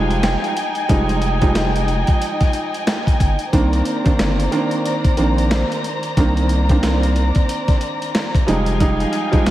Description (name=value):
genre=hip hop, boom-bap hip-hop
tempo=91 BPM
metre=4/4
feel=swing 60% on 16ths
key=C minor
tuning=A4 = 440 Hz
part: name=dark grand piano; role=accompaniment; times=0.0-9.5 s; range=Eb3 to Eb4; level=-21 LUFS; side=right 2 dB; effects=cassette tape, high-pass filter, low-pass filter
part: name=dark studio string section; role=sustained chords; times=0.0-9.5 s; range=Eb3 to Bb5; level=-23 LUFS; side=left 1 dB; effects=high-pass filter, low-pass filter
part: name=round analog bass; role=bass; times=0.0-9.5 s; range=F1 to C2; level=-19 LUFS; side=equal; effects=none
part: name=dusty soul sampler-style drum kit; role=drums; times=0.1-9.5 s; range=hi-hat, kick drum, snare drum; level=-19 LUFS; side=equal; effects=none
part: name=finger snap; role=percussion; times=0.2-9.5 s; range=none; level=-37 LUFS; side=left 3 dB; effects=none
room=moderate lush hall reverb, RT60 2.6 s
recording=dreamy mix soaked in reverb, vinyl crackle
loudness=-15 LUFS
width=side -14 dB against mid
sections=0.0-9.5 A section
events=none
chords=0.0 Fm9; 3.5 Cm9; 8.5 Fm9